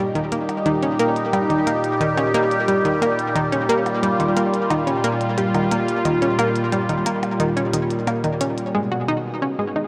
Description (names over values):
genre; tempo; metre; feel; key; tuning
ambient, sequencer-driven space music; 89 BPM; 4/4; straight; unclear; A4 = 439 Hz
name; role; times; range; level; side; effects
phased analog pad; sustained chords; 0.0-9.9 s; Bb2 to G#4; -23 LUFS; equal; phaser, chorus
analog pluck; riff; 0.0-9.8 s; Eb3 to F#4; -24 LUFS; equal; chorus, tape echo
electronic hi-hat and percussion blips; percussion; 0.2-8.7 s; none; -35 LUFS; equal; tape echo
room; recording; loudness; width
wet huge ambient reverb, RT60 8.2 s; none; -20 LUFS; mono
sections
0.0-8.7 A section; 8.7-9.9 B section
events
none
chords
0.0 Eb; 8.7 G#m